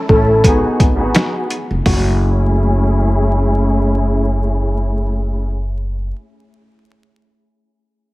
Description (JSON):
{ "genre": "hip hop, boom-bap hip-hop", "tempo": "85 BPM", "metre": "4/4", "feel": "swing 55% on 16ths", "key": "F# dorian", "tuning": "A4 = 441 Hz", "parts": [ { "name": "flamenco guitar", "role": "melody", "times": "0.1-3.9 s", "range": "F#4 to A4", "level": "-19 LUFS", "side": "equal", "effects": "high-pass filter, low-pass filter" }, { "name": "clear studio string section", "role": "accompaniment", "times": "0.1-5.4 s", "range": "A3 to A4", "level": "-19 LUFS", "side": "equal", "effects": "high-pass filter, low-pass filter" }, { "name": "upright bass", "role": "bass", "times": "0.1-6.1 s", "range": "E#1 to A1", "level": "-16 LUFS", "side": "equal", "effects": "none" }, { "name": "trip hop sampler-style drum kit", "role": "drums", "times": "0.1-2.0 s", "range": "hi-hat, kick drum, snare drum, toms", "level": "-15 LUFS", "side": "equal", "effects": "overdrive" } ], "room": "small room ambience", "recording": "vinyl crackle", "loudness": "-13 LUFS", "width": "side -19 dB against mid", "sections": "0.0-1.9 A section; 1.9-4.7 B section", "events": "none", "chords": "0.4 G#m7; 1.9 F#m7" }